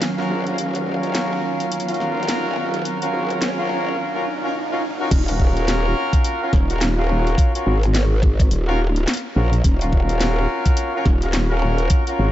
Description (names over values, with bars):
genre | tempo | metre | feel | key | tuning
glitch hop | 106 BPM | 4/4 | swing 59% on 16ths | Eb minor | A4 = 440 Hz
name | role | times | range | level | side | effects
dark studio string section | sustained chords | 0.0-3.9 s | Eb3 to F5 | -27 LUFS | right 2 dB | sidechain pumping, low-pass filter
drum and bass drum kit | drums | 0.0-12.2 s | crash cymbal, hi-hat, snare drum | -28 LUFS | equal | none
riser and swell | sound effects | 0.7-5.1 s | none | -32 LUFS | right 1 dB | none
mellow horn section | stabs | 0.2-12.3 s | Db4 to Bb4 | -23 LUFS | equal | vintage 12-bit sampler grit, sidechain pumping, analog delay
growl bass | bass | 0.3-12.3 s | Eb1 to Bb1 | -20 LUFS | equal | chorus, high-pass filter
electronic kick drum | drums | 5.1-12.0 s | none | -17 LUFS | equal | none
room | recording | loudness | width
moderate huge ambient reverb, RT60 4.3 s | dreamy mix soaked in reverb, nothing above 7.8 kHz | -17 LUFS | side -13 dB against mid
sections
0.0-5.1 A section; 5.1-12.3 B section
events
build-up 0.0-5.1; riser 0.7-5.1; swell 4.0-5.1; drop 5.1-12.3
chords
0.0 Ebm9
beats
0.02 | 0.59 1.15 1.72 2.28 | 2.85 3.42 3.98 4.55 | 5.11 5.68 6.25 6.81 | 7.38 7.94 8.51 9.08 | 9.64 10.21 10.78 11.34 | 11.91